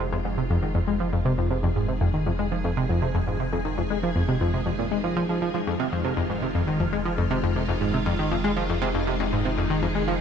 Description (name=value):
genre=ambient, sequencer-driven space music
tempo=119 BPM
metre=4/4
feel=straight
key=F minor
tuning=A4 = 437 Hz
part: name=phased string machine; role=sustained chords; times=0.0-10.2 s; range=Eb3 to Ab4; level=-31 LUFS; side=equal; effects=ensemble chorus, phaser
part: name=tight sequenced synth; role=riff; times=0.0-10.2 s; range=F2 to Ab3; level=-24 LUFS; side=equal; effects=chorus, ping-pong delay
part: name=warm sub bass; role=bass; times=0.0-10.2 s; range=F1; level=-32 LUFS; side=equal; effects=none
part: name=pulsing gated texture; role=texture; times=0.1-10.2 s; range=Ab3 to Ab4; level=-41 LUFS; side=right 1 dB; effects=none
room=moderate huge ambient reverb, RT60 7.7 s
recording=none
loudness=-22 LUFS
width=side -8 dB against mid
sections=0.0-10.2 A section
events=fade-in on string machine 0.0-10.2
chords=0.0 Fm7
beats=0.00 0.50 1.00 | 1.51 2.01 2.52 3.02 | 3.52 4.03 4.53 5.04 | 5.54 6.05 6.55 7.05 | 7.56 8.06 8.57 9.07 | 9.58 10.08